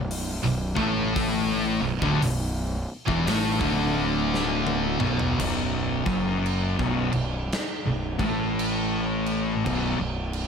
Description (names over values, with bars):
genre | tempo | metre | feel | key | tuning
stoner and doom metal | 56 BPM | 4/4 | swing 62% on 8ths | B minor | A4 = 440 Hz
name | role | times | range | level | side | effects
heavy high-gain guitar | riff | 0.0-5.4 s | B1 to A3 | -30 LUFS | equal | distortion
thick fuzz guitar | riff | 0.0-10.4 s | B1 to A3 | -28 LUFS | left 10 dB | distortion
thick fuzz guitar | riff | 0.0-10.4 s | B1 to A3 | -28 LUFS | right 8 dB | distortion
fuzz fingered electric bass | bass | 0.0-10.5 s | B0 to A1 | -30 LUFS | equal | overdrive
big rock drum kit | drums | 0.1-10.5 s | crash cymbal, hi-hat, kick drum, snare drum, toms | -31 LUFS | equal | none
room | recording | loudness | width
studio ambience | none | -23 LUFS | side -6 dB against mid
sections
0.0-5.4 A section; 5.4-10.5 B section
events
drum fill 4.3-5.4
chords
0.0 Bm; 5.4 B5